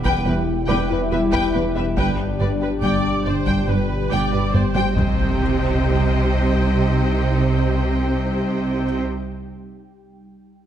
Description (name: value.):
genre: cinematic, hybrid orchestral and electronic film score.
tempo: 70 BPM.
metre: 4/4.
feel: straight.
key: C minor.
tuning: A4 = 440 Hz.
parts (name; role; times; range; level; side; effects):
clear symphonic violin section; second line; 0.0-9.0 s; B4 to G5; -31 LUFS; left 4 dB; none.
rich symphonic viola section; accompaniment; 0.0-9.0 s; B4 to D5; -28 LUFS; right 1 dB; none.
ethereal airy pad; sustained chords; 0.0-9.0 s; B2 to G5; -28 LUFS; left 1 dB; ensemble chorus, built-in reverb.
mellow French horn section; sustained chords; 0.0-9.0 s; B3 to E4; -28 LUFS; left 4 dB; none.
resonant blip pluck; arpeggios; 0.0-4.9 s; E3 to G4; -29 LUFS; equal; phaser, tape echo.
dark detuned saw bass; bass; 0.0-9.0 s; E1 to C2; -24 LUFS; equal; none.
taiko ensemble; drums; 0.0-6.6 s; none; -25 LUFS; equal; none.
felt-muted upright piano; texture; 0.0-5.4 s; D5 to D6; -36 LUFS; left 2 dB; tape echo.
warm symphonic violin section; melody; 0.1-9.0 s; B4 to G5; -31 LUFS; left 4 dB; none.
rich symphonic cello section; bass; 0.1-9.0 s; E2 to C3; -25 LUFS; right 3 dB; none.
rich symphonic double bass section; bass; 0.3-9.0 s; E1 to C2; -26 LUFS; right 2 dB; none.
impact; sound effects; 5.0-9.1 s; none; -28 LUFS; equal; none.
room: moderate scoring stage reverb, RT60 1.5 s.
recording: none.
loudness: -17 LUFS.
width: side -10 dB against mid.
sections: 0.0-5.4 A section; 5.4-8.8 B section.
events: drum fill 4.5-5.4; impact 5.4-8.8.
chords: 0.0 Em; 2.0 G; 5.0 Cm.